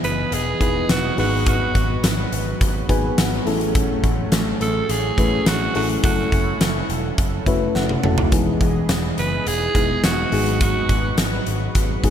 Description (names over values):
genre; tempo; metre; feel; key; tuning
1980s-style pop; 105 BPM; 4/4; straight; unclear; A4 = 440 Hz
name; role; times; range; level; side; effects
raspy alto saxophone; melody; 0.0-11.1 s; F#4 to B4; -25 LUFS; right 3 dB; shimmer reverb, ping-pong delay
mellow FM electric piano; accompaniment; 0.0-12.1 s; G#2 to A5; -24 LUFS; left 2 dB; chorus, shimmer reverb
brassy analog pad; sustained chords; 0.0-12.1 s; E3 to D#5; -30 LUFS; right 1 dB; chorus, shimmer reverb
picked electric bass; bass; 0.0-12.1 s; E1 to A1; -26 LUFS; equal; none
huge arena drum kit; drums; 0.0-12.1 s; hi-hat, kick drum, snare drum, tambourine, toms; -21 LUFS; equal; none
room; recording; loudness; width
moderate lush hall reverb, RT60 2.7 s; bright 1980s-style digital production; -17 LUFS; side -9 dB against mid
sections
0.0-12.1 A section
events
FM electric piano fill 2.6-3.8, 7.2-8.3; drum fill 7.8-8.3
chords
0.0 Emaj7; 1.2 G#m7; 3.5 Amaj7; 6.0 F#m7; 8.3 Emaj7; 10.3 G#m7